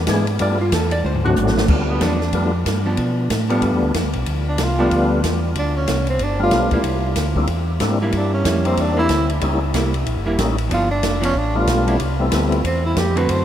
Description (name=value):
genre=soul jazz organ trio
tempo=186 BPM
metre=4/4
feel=swing 62% on 8ths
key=G mixolydian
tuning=A4 = 440 Hz
part: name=archtop guitar, miked and amplified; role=accompaniment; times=0.0-13.4 s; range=D3 to D5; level=-25 LUFS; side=right 2 dB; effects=none
part: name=mellow tonewheel organ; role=bass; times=0.0-13.4 s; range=E1 to B2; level=-21 LUFS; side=equal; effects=chorus vibrato, slow rotary speaker
part: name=percussive tonewheel organ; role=melody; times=0.1-12.6 s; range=E3 to G#4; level=-23 LUFS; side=left 2 dB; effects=slow rotary speaker, overdrive, chorus vibrato
part: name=open jazz drum kit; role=drums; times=0.1-13.4 s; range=crash cymbal, hi-hat, kick drum, ride cymbal, snare drum, toms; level=-24 LUFS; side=equal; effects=none
part: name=breathy tenor saxophone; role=melody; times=1.9-13.4 s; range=B3 to C5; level=-24 LUFS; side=right 2 dB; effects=none
room=wet cathedral reverb, RT60 5.9 s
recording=in a vast, echoing space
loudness=-16 LUFS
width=side -10 dB against mid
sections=0.0-1.7 A section; 1.7-13.4 A section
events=hollow-body jazz guitar solo 0.0-1.7; drum fill 1.1-1.7; tenor saxophone solo 1.7-13.4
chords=0.4 G7; 1.1 D7; 1.7 G7; 5.6 Csus2; 6.2 G7; 6.8 C7; 9.4 C#dim7; 10.7 G7; 12.0 Am7